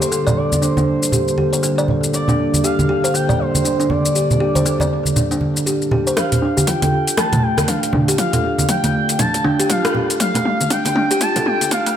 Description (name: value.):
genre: afro house.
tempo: 119 BPM.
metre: 4/4.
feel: swing 60% on 16ths.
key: D minor.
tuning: A4 = 440 Hz.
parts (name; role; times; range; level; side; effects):
expressive portamento lead; melody; 0.0-12.0 s; C5 to A5; -22 LUFS; equal; wide subtle chorus, tape echo.
dark analog pad; sustained chords; 0.0-12.0 s; D3 to F5; -24 LUFS; equal; chorus, sidechain pumping.
kalimba; arpeggios; 0.0-12.0 s; A3 to D5; -21 LUFS; left 1 dB; sidechain pumping, low-pass filter, tape echo.
deep house drum kit; drums; 0.0-11.9 s; hi-hat, rim click, shaker, toms; -21 LUFS; left 2 dB; overdrive, studio reverb.
congas; percussion; 0.3-11.7 s; none; -21 LUFS; right 2 dB; dub echo.
electronic kick drum; drums; 6.2-11.8 s; none; -27 LUFS; equal; overdrive, high-pass filter on kick, studio reverb.
room: moderate plate reverb, RT60 2.1 s.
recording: echo-heavy mix, high-pass filter, faint mains hum.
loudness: -15 LUFS.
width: side -9 dB against mid.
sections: 0.0-6.2 A section; 6.2-12.0 B section.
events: build-up 6.2-12.0; drum fill 6.2-12.0; filter sweep on kalimba 6.2-12.0.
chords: 0.0 Gm/D; 6.2 Dm.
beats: | 0.12 0.62 1.13 1.63 | 2.14 2.64 3.14 3.65 | 4.15 4.66 5.16 5.67 | 6.17 6.67 7.18 7.68 | 8.19 8.69 9.19 9.70 | 10.20 10.71 11.21 11.71.